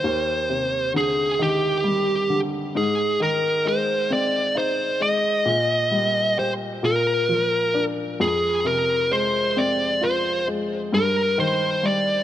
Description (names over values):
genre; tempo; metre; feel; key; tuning
pop; 44 BPM (dotted quarters); 6/8; straight; Eb major; A4 = 441 Hz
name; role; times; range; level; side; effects
fuzz lead guitar; melody; 0.0-12.2 s; G4 to Eb5; -21 LUFS; right 1 dB; distortion, ping-pong delay
warm upright piano; accompaniment; 0.0-12.2 s; Eb2 to G4; -25 LUFS; left 2 dB; none
room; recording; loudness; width
light reverb, studio reverb; rough home demo mix, nothing above 10.6 kHz; -19 LUFS; side -12 dB against mid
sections
0.0-12.2 A section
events
none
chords
0.0 Cmadd9/Eb; 2.8 Ab; 5.5 Eb/Bb; 6.8 Bb; 8.2 Fm; 10.9 Eb/G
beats
| 0.04 1.40 | 2.75 4.10 | 5.46 6.83 | 8.20 9.57 | 10.94